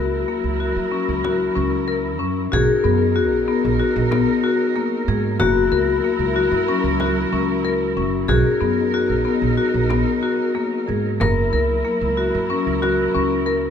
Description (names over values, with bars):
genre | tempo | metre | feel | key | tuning
contemporary instrumental, chamber music in an uneven meter | 186 BPM (eighths) | 9/8 | straight | F# mixolydian | A4 = 440 Hz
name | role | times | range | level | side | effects
vibraphone with medium hard mallets | second line | 0.0-13.7 s | F#4 to A#4 | -24 LUFS | left 6 dB | none
dark studio string section | sustained chords | 0.0-13.7 s | F#3 to A#4 | -25 LUFS | right 2 dB | none
marimba with medium hard mallets | arpeggios | 0.0-13.7 s | A#3 to A#4 | -21 LUFS | left 4 dB | none
upright bass | bass | 0.0-13.7 s | F#1 to F#3 | -24 LUFS | right 4 dB | none
frame drum | percussion | 1.2-13.6 s | none | -28 LUFS | left 2 dB | none
room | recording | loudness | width
little or no reverb | close, detailed microphones | -17 LUFS | side -8 dB against mid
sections
0.0-13.7 A section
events
none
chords
0.0 F#7; 2.5 Bmaj7; 5.4 F#7; 8.3 Bmaj7; 11.2 F#7